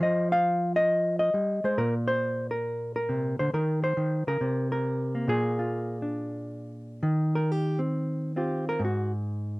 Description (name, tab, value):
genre	solo jazz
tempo	137 BPM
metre	4/4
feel	swing 68% on 8ths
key	Eb major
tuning	A4 = 440 Hz
part	hollow-body jazz guitar	solo	0.0-9.6 s	Ab2 to F5	-25 LUFS	equal	none
room	light reverb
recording	dry, close 1970s-style studio recording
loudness	-25 LUFS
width	side -22 dB against mid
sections	0.0-7.0 A section; 7.0-9.6 B section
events	hollow-body jazz guitar solo 7.0-9.6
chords	0.0 F7(no3); 1.8 Bbsus2; 3.5 Cm7; 4.4 Bbsus2/C; 5.3 Bb7; 7.0 Eb69; 8.8 N.C.